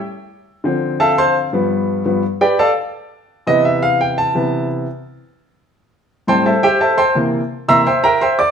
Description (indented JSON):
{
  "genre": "jazz",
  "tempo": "170 BPM",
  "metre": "4/4",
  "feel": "straight",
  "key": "C major",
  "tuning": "A4 = 443 Hz",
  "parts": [
    { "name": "warm baby grand piano", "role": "solo", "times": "0.6-8.5 s", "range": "G2 to E6", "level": "-13 LUFS", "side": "equal", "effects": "none" }
  ],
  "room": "wet large studio reverb, RT60 1.0 s",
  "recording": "band playing live in one room",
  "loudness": "-14 LUFS",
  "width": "side -7 dB against mid",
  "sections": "0.0-5.8 A section; 5.8-8.5 A section",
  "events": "grand piano solo 0.0-8.5",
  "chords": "0.1 Dm7; 1.5 G9; 2.9 Cmaj7; 5.8 Am7; 7.2 C7",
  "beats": "| 0.11 0.47 0.82 1.17 | 1.53 1.88 2.23 2.58 | 2.94 3.29 3.64 4.00 | 4.35 4.70 5.05 5.40 | 5.75 6.11 6.46 6.81 | 7.16 7.51 7.86 8.21"
}